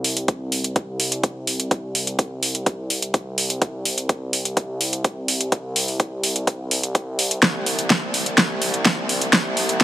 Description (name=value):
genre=progressive house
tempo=126 BPM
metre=4/4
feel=straight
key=unclear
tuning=A4 = 439 Hz
part: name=fat analog bass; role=bass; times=0.0-9.8 s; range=C2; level=-27 LUFS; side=equal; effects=tube saturation, sidechain pumping, high-pass filter
part: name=deep house drum kit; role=drums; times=0.0-9.8 s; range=hi-hat, snare drum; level=-19 LUFS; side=equal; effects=small room ambience
part: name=electronic kick drum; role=drums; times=0.3-9.8 s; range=none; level=-20 LUFS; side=equal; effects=high-pass filter on kick, small room ambience
room=light reverb, digital ambience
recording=high-pass filter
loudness=-19 LUFS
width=side -14 dB against mid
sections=0.0-9.8 A section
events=build-up 0.0-9.8; drum fill 7.4-9.8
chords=none